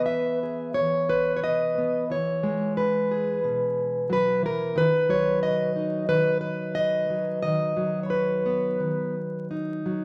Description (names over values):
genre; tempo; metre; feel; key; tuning
folk, solo fingerstyle acoustic guitar; 89 BPM; 4/4; rubato; B major; A4 = 441 Hz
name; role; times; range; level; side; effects
fingerpicked plugged-in steel-string acoustic guitar; solo; 0.0-10.0 s; B2 to E5; -25 LUFS; equal; none
room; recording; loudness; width
light reverb; vinyl crackle; -25 LUFS; mono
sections
0.0-10.0 A section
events
none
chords
0.0 E; 4.8 B/D#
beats
0.06 0.74 1.42 | 2.10 2.77 3.44 4.10 | 4.75 5.42 6.08 6.75 | 7.43 8.11 8.80 9.50